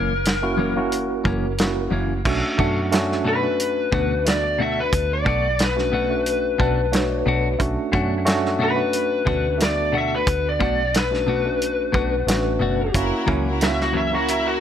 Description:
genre	straight-eighth soul blues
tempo	90 BPM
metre	4/4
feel	straight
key	B minor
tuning	A4 = 443 Hz
part	lead guitar through a small cranked amp	melody	0.0-14.6 s	F#4 to E5	-23 LUFS	left 3 dB	overdrive
part	clean electric guitar	stabs	0.0-14.2 s	F#2 to F#4	-27 LUFS	left 3 dB	phaser, analog delay
part	vintage muted fingered electric bass	bass	0.0-14.6 s	F#1 to F#2	-27 LUFS	right 1 dB	none
part	warm soul drum kit	drums	0.3-14.4 s	crash cymbal, hi-hat, kick drum, snare drum	-24 LUFS	right 1 dB	none
part	tine electric piano	accompaniment	0.4-14.6 s	A3 to A5	-25 LUFS	right 4 dB	medium stereo tremolo
part	warm symphonic string section	sustained chords	12.9-14.6 s	E4 to A#4	-27 LUFS	left 2 dB	none
room	light reverb, small room ambience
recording	none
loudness	-18 LUFS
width	side -9 dB against mid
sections	0.0-2.3 A section; 2.3-14.6 B section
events	lead electric guitar solo 2.3-14.6; tine electric piano fill 6.3-7.6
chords	0.0 F#7; 2.3 Bm7; 12.9 F#7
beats	0.25 0.92 1.58 | 2.25 2.92 3.59 4.26 | 4.92 5.59 6.26 6.93 | 7.60 8.27 8.93 9.60 | 10.27 10.94 11.61 12.28 | 12.94 13.61 14.28

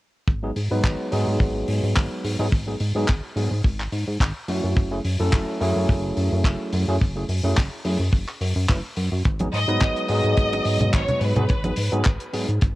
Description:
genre	nu-disco, nu disco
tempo	107 BPM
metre	4/4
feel	swing 54% on 16ths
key	unclear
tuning	A4 = 443 Hz
part	chorused synth bass	bass	0.3-12.8 s	F#1 to G#2	-24 LUFS	equal	none
part	kick drum	drums	0.3-12.7 s	none	-19 LUFS	equal	cassette tape
part	overdriven tine electric piano	accompaniment	0.4-12.5 s	F#3 to B4	-26 LUFS	equal	sidechain pumping, cassette tape, analog delay
part	damped 70s drum kit	drums	0.6-12.7 s	handclaps, hi-hat	-31 LUFS	left 1 dB	cassette tape
part	congas and bongos	percussion	9.4-11.7 s	none	-27 LUFS	right 1 dB	none
part	bright studio violin section	melody	9.5-12.1 s	B4 to D#5	-26 LUFS	equal	cassette tape, analog delay
room	light reverb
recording	home recording on cassette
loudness	-20 LUFS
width	side -18 dB against mid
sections	0.3-12.8 A section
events	none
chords	0.3 G#m7; 4.5 F#m7; 9.3 G#m7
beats	| 0.28 0.84 1.40 1.96 | 2.52 3.09 3.65 4.21 | 4.77 5.33 5.89 6.45 | 7.01 7.57 8.13 8.69 | 9.25 9.81 10.38 10.94 | 11.50 12.06 12.62

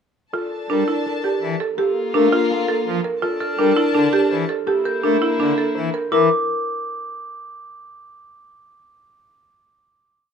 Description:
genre	classical, minimalist pattern music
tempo	166 BPM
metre	4/4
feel	straight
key	Bb lydian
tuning	A4 = 440 Hz
part	concert harp	melody	0.3-7.6 s	A4 to C5	-22 LUFS	left 9 dB	none
part	rich chamber violin section	sustained chords	0.3-5.9 s	Bb3 to A5	-27 LUFS	left 2 dB	none
part	buzzing marimba with hard mallets	arpeggios	0.3-6.3 s	D4 to Bb4	-21 LUFS	right 5 dB	none
part	pipe organ, full organ	accompaniment	0.7-6.3 s	D3 to A3	-24 LUFS	equal	none
part	glockenspiel with soft plastic mallets	arpeggios	3.4-6.3 s	D6 to G6	-27 LUFS	right 2 dB	none
room	light reverb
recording	none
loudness	-17 LUFS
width	side -7 dB against mid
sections	0.3-6.1 A section; 6.1-7.6 final chord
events	none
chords	0.3 Bbmaj7#11; 1.8 Gm9; 3.2 Bbmaj9#11; 4.7 C13; 6.1 Bbmaj7(b5, no3) (rootless)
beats	| 0.34 0.70 1.06 1.42 | 1.78 2.14 2.50 2.87 | 3.23 3.59 3.95 4.31 | 4.67 5.04 5.40 5.76 | 6.12 6.48 6.84 7.20

